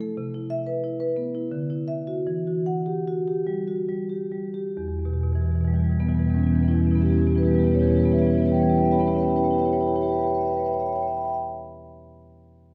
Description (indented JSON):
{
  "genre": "classical, contemporary piece for solo marimba",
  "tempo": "66-93 BPM",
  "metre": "3/4",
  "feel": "rubato",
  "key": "E minor",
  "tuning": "A4 = 437 Hz",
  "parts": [
    { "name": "marimba with soft mallets", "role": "solo", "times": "0.0-11.4 s", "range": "E2 to B5", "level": "-24 LUFS", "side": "equal", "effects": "none" }
  ],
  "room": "wet recital hall reverb, RT60 1.7 s",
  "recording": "recorded in a church or concert hall",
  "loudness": "-24 LUFS",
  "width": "mono",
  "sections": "0.0-4.8 A section; 4.8-9.9 B section",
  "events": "slowing down 0.0-4.8",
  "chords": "0.2 Cmaj7; 1.5 Dadd9; 2.3 Emadd9; 4.8 Em6",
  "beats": "| 0.16 0.82 1.52 | 2.26 3.05 3.88 | 4.76 5.64 6.52 | 7.37 8.22 9.08"
}